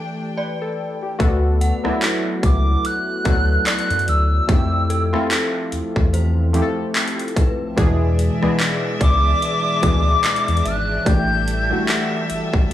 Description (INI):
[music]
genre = contemporary R&B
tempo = 73 BPM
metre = 4/4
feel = swing 58% on 16ths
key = D major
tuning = A4 = 440 Hz
[part]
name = warm analog keys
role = accompaniment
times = 0.0-12.7 s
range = B2 to B4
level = -23 LUFS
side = left 1 dB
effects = chorus
[part]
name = warm chamber string section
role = sustained chords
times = 0.0-1.2, 7.8-12.7 s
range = G3 to G5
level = -28 LUFS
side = left 1 dB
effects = none
[part]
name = synth chime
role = texture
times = 0.0-11.4 s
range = G4 to F#5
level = -32 LUFS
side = left 1 dB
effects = ensemble chorus, analog delay
[part]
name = round analog bass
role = bass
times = 1.2-12.7 s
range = G1 to F#2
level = -19 LUFS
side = equal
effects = none
[part]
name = trap drum kit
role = drums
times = 1.2-12.7 s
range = handclaps, hi-hat, kick drum, rim click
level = -20 LUFS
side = equal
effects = none
[part]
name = hollow clarinet-like synth lead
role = melody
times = 2.4-12.3 s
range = D6 to G6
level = -21 LUFS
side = left 1 dB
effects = chorus, phaser, analog delay
[sound]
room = digital ambience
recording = dry, gritty hardware recording, transformer saturation, studio reverb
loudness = -16 LUFS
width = side -12 dB against mid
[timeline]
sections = 0.0-1.2 A section; 1.2-12.7 A section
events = break 0.0-1.2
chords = 0.0 A7sus4; 1.2 D6; 4.5 Fmaj9; 7.8 E7; 11.1 A7sus4